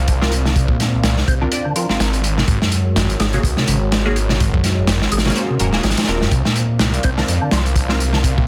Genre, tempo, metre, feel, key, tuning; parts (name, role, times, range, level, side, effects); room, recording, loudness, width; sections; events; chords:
breakbeat, breaks; 125 BPM; 4/4; swing 57% on 16ths; A4 = 439 Hz
dark analog pad; sustained chords; 0.0-8.5 s; Ab3 to F5; -30 LUFS; equal; chorus, vintage 12-bit sampler grit, sidechain pumping
phased detuned saw bass; bass; 0.0-8.4 s; Eb1 to F2; -22 LUFS; equal; phaser
sub drop; sound effects; 0.0-0.6 s; barely audible
crunchy breakbeat drum kit; drums; 0.1-8.5 s; hi-hat, kick drum, snare drum; -21 LUFS; equal
filtered dub chord stab; stabs; 0.2-8.0 s; Bb3 to D5; -26 LUFS; equal; phaser, ensemble chorus, digital delay
percussive tonewheel organ; riff; 0.5-8.5 s; Gb2 to C4; -24 LUFS; equal; chorus vibrato, fast rotary speaker, digital delay
light reverb; dense, heavily limited modern master; -17 LUFS; mono
0.0-8.5 A section
impact 0.0-0.6
0.0 C9sus4; 2.2 Ab9sus4; 6.3 C9sus4